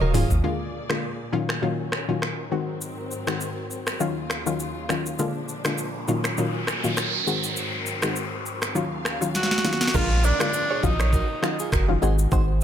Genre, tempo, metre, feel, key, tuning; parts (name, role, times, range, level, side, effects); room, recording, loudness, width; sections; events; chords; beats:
afrobeats; 101 BPM; 4/4; swing 55% on 16ths; Eb dorian; A4 = 440 Hz
breathy tenor saxophone; melody; 0.0-0.1, 9.4-11.7 s; Eb3 to Gb4; -28 LUFS; equal; ping-pong delay
analog pluck; accompaniment; 0.0-12.6 s; Bb2 to Gb4; -27 LUFS; left 2 dB; chorus
muted studio string section; sustained chords; 0.0-9.9 s; Eb2 to Eb6; -34 LUFS; equal
direct-recorded clean electric guitar; riff; 0.0-0.3, 10.0-12.5 s; Eb4 to D5; -31 LUFS; right 9 dB; spring reverb, ping-pong delay
warm sub bass; bass; 0.0-0.4, 9.9-12.6 s; Eb1 to Bb1; -22 LUFS; equal
afro-pop drum kit; drums; 0.0-12.6 s; crash cymbal, finger snaps, hi-hat, kick drum, rim click, shaker, snare drum, toms; -27 LUFS; equal
noise sweep and downlifter; sound effects; 5.9-12.6 s; -31 LUFS; equal
light reverb, digital ambience; -22 LUFS; side -9 dB against mid
0.4-9.9 A section; 9.9-12.6 B section
drum fill 0.0-0.4, 9.3-9.9; noise sweep 5.9-9.9
0.4 Bb7; 1.3 Ebm9/Bb; 2.5 Ab7; 4.0 Ebm9; 5.2 Bb7; 6.1 Ebm9/Bb; 7.3 Ab7; 8.8 Ebm9; 9.9 Bb7; 10.8 Ebm9/Bb; 12.0 Ab7
| 0.44 1.03 1.63 2.22 | 2.81 3.41 4.00 4.60 | 5.19 5.78 6.38 6.97 | 7.57 8.16 8.75 9.35 | 9.94 10.54 11.13 11.72 | 12.32